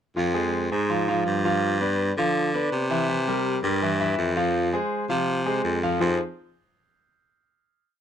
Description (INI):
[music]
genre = latin, salsa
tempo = 164 BPM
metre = 4/4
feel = straight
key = F minor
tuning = A4 = 440 Hz
[part]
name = bright grand piano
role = accompaniment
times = 0.2-6.2 s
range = E3 to F5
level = -25 LUFS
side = left 1 dB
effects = none
[part]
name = raspy baritone saxophone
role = bass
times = 0.2-6.2 s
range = F2 to D3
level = -25 LUFS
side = equal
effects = none
[sound]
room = light reverb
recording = close, detailed microphones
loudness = -22 LUFS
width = side -9 dB against mid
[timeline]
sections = 0.2-6.0 A section; 6.0-7.5 final chord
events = none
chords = 0.2 Fm; 1.6 G7; 3.1 C7; 4.6 Fm; 6.0 Fm7